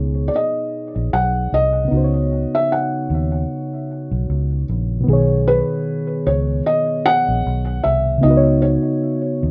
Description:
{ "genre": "lo-fi hip hop", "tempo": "76 BPM", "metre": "4/4", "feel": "swing 56% on 16ths", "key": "B major", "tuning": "A4 = 440 Hz", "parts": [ { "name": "felt-muted upright piano", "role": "melody", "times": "0.0-9.5 s", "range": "B4 to F#5", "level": "-22 LUFS", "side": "equal", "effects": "low-pass filter, analog delay" }, { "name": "muted felt-like synth keys", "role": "accompaniment", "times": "0.0-9.5 s", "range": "B2 to C#5", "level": "-23 LUFS", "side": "equal", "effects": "chorus, cassette tape, low-pass filter" }, { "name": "vintage muted fingered electric bass", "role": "bass", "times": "0.0-9.5 s", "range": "A#1 to D#2", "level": "-22 LUFS", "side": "equal", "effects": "none" } ], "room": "moderate studio reverb, RT60 0.5 s", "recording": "rough home demo mix", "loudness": "-19 LUFS", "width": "mono", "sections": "0.0-9.5 A section", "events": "none", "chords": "0.0 B69; 1.9 C#9sus4; 5.1 B69; 8.2 C#9sus4" }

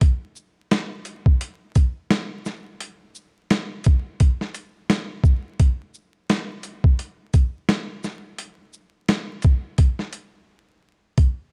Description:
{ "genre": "hip hop", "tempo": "86 BPM", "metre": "4/4", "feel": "swing 58% on 16ths", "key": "none", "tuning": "none", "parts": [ { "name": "boom bap sampler-style drum kit", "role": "drums", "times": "0.0-11.4 s", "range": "hi-hat, kick drum, shaker, snare drum", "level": "-20 LUFS", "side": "equal", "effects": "vintage 12-bit sampler grit" } ], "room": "digital ambience", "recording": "dark, warm production, vinyl crackle", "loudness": "-22 LUFS", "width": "mono", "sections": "0.0-11.2 A section", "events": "break 10.5-11.2", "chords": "none" }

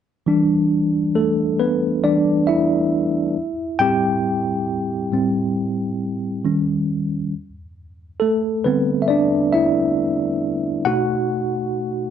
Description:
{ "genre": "R&B", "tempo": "68 BPM", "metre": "4/4", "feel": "swing 60% on 16ths", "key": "E minor", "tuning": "A4 = 440 Hz", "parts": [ { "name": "tine electric piano", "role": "solo", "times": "0.3-12.1 s", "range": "A2 to G5", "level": "-18 LUFS", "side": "equal", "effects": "medium stereo tremolo" } ], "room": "wet studio reverb, RT60 0.5 s", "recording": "nothing above 10.4 kHz", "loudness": "-18 LUFS", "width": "side -9 dB against mid", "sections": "0.3-12.1 A section", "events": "tine electric piano solo 0.3-12.1", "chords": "0.3 Em7; 3.4 Am7; 6.4 D#7; 7.3 D9sus4; 10.9 B7" }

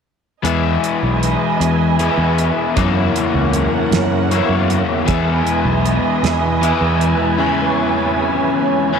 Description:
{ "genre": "psychedelic rock", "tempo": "52 BPM (dotted quarters)", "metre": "6/8", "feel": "straight", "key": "E lydian", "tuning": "A4 = 440 Hz", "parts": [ { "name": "overdriven electric guitar", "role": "riff", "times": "0.4-9.0 s", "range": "F#2 to E4", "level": "-18 LUFS", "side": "left 9 dB", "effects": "flanger" }, { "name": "fingered electric bass", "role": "bass", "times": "0.4-7.1 s", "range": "B1 to F#2", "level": "-18 LUFS", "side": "right 1 dB", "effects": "none" }, { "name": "organ-like drone", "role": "drone", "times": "1.3-9.0 s", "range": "E2", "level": "-24 LUFS", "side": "right 3 dB", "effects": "ensemble chorus, built-in reverb" }, { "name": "damped 70s drum kit", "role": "drums", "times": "0.4-7.2 s", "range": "hi-hat, kick drum, snare drum", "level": "-23 LUFS", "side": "right 4 dB", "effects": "none" }, { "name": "muted studio string section", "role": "sustained chords", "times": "0.5-9.0 s", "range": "A#4 to G#5", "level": "-20 LUFS", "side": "right 8 dB", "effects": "none" } ], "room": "moderate echo chamber reverb, RT60 2.0 s, studio reverb", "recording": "1960s-style stereo with parts hard left and right", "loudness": "-14 LUFS", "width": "side -6 dB against mid", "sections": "0.5-9.0 A section", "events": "none", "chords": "0.5 Emaj7; 2.8 F#7; 5.1 Emaj7; 7.4 C#m7" }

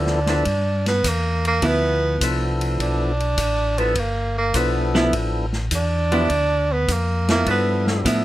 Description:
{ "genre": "soul jazz organ trio", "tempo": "103 BPM", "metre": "4/4", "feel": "swing 69% on 8ths", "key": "G mixolydian", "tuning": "A4 = 440 Hz", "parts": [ { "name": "clear tenor saxophone", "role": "melody", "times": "0.0-8.0 s", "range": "Bb3 to D4", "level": "-22 LUFS", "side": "right 2 dB", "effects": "none" }, { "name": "percussive tonewheel organ", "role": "melody", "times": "0.0-8.2 s", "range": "F3 to A4", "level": "-24 LUFS", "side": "left 2 dB", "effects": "slow rotary speaker, overdrive" }, { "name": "mellow tonewheel organ", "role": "bass", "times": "0.0-8.2 s", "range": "G1 to A2", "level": "-23 LUFS", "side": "left 1 dB", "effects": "chorus vibrato, slow rotary speaker" }, { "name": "vintage drum kit", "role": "drums", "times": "0.1-8.2 s", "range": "hi-hat, kick drum, ride cymbal, snare drum", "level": "-27 LUFS", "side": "left 1 dB", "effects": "none" }, { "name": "archtop guitar, miked and amplified", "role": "accompaniment", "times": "1.6-8.2 s", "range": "F3 to E4", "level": "-22 LUFS", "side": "right 2 dB", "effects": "none" } ], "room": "light reverb", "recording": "none", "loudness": "-18 LUFS", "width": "side -15 dB against mid", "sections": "0.0-8.2 A section", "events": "tenor saxophone solo 0.0-8.2", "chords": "0.0 G13" }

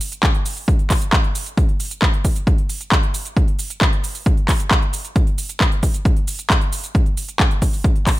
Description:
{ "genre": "trance", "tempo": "134 BPM", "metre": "4/4", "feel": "straight", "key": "none", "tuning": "none", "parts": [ { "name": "big-room dance drum kit", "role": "drums", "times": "0.0-8.2 s", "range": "handclaps, hi-hat, shaker", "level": "-22 LUFS", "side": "equal", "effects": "studio reverb" }, { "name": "electronic kick drum", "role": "drums", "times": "0.2-8.2 s", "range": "none", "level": "-16 LUFS", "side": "equal", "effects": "studio reverb" } ], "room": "little or no reverb", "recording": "none", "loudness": "-16 LUFS", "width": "side -17 dB against mid", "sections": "0.0-8.2 A section", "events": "none", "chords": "none" }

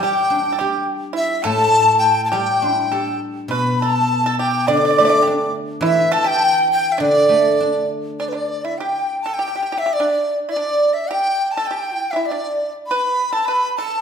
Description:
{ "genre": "chinese traditional", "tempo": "103 BPM", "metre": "2/4", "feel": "rubato", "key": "D zhi mode", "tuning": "A4 = 441 Hz", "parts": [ { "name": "breathy mellow dizi", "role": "melody", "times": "0.0-14.0 s", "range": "B4 to D6", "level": "-20 LUFS", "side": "right 1 dB", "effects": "none" }, { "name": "bright reedy low xiao", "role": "second line", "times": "0.0-14.0 s", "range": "D5 to B5", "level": "-20 LUFS", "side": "left 3 dB", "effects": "none" }, { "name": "pipa", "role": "second line", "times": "0.0-14.0 s", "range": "D4 to D5", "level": "-24 LUFS", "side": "right 5 dB", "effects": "none" }, { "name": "guzheng", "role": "accompaniment", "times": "0.0-8.8 s", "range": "A2 to G4", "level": "-22 LUFS", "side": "left 1 dB", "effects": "none" } ], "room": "wet recital hall reverb, RT60 1.4 s", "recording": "minimal, uncompressed stereo recording", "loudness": "-16 LUFS", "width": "side -7 dB against mid", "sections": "0.0-8.2 A section; 8.2-14.0 B section", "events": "none", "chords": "none" }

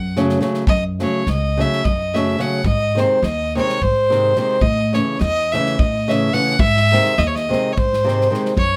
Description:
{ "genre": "balkan folk, Balkan wedding band", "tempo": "213 BPM (eighths)", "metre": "7/8", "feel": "straight", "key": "unclear", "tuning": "A4 = 440 Hz", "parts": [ { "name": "clear fiddle", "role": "melody", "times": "0.0-8.8 s", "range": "B#4 to F#5", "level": "-21 LUFS", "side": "equal", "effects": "none" }, { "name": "upright bass", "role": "bass", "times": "0.0-8.8 s", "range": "C#2 to A2", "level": "-24 LUFS", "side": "equal", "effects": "none" }, { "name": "nylon-string guitar", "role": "accompaniment", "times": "0.2-8.5 s", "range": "B#2 to C#4", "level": "-22 LUFS", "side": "equal", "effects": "none" }, { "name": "natural country drum kit", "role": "percussion", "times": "0.2-8.7 s", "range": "kick drum, snare drum", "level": "-26 LUFS", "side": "equal", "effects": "none" } ], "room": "moderate small room ambience, RT60 0.5 s", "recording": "none", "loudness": "-18 LUFS", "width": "mono", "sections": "0.7-8.8 A section", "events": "none", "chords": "0.0 F#m; 2.7 G#; 4.6 A; 6.6 G#" }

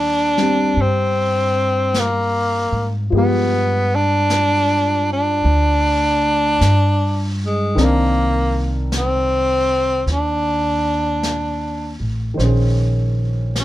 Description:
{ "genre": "jazz ballad", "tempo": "52 BPM", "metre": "4/4", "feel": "swing 66% on 8ths", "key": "Eb major", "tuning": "A4 = 440 Hz", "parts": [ { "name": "breathy tenor saxophone", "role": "melody", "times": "0.0-13.6 s", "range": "Ab3 to D4", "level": "-18 LUFS", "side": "equal", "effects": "none" }, { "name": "warm baby grand piano", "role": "accompaniment", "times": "0.0-13.6 s", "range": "Eb3 to C5", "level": "-23 LUFS", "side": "left 1 dB", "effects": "none" }, { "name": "upright bass", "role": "bass", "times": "0.0-13.6 s", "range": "A1 to Ab2", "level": "-20 LUFS", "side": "equal", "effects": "none" }, { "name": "jazz brush drum kit", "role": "drums", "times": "0.4-13.6 s", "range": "brushed snare drum, hi-hat, snare drum", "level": "-30 LUFS", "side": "left 1 dB", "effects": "none" } ], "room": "light reverb", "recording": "none", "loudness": "-15 LUFS", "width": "side -15 dB against mid", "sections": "0.0-13.6 A section", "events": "none", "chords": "0.0 Ebmaj9; 3.1 G7b9; 7.8 Cm9; 12.4 Bbm11" }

